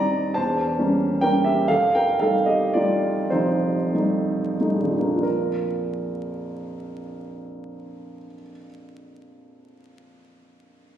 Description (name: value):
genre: classical, romantic nocturne for solo piano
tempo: 29-48 BPM (dotted quarters)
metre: 6/8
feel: rubato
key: Bb major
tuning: A4 = 441 Hz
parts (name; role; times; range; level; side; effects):
- warm grand piano; solo; 0.0-11.0 s; Eb1 to Bb5; -21 LUFS; right 1 dB; none
room: wet recital hall reverb, RT60 1.6 s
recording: recorded on a phone in the room, studio reverb, vinyl crackle, compression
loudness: -20 LUFS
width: side -10 dB against mid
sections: 0.0-5.2 A section; 5.2-8.9 B section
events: slowing down 0.0-5.2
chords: 0.3 Edim7; 1.7 F9; 5.2 Bb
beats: 0.35 | 1.69 3.30 | 5.23 7.06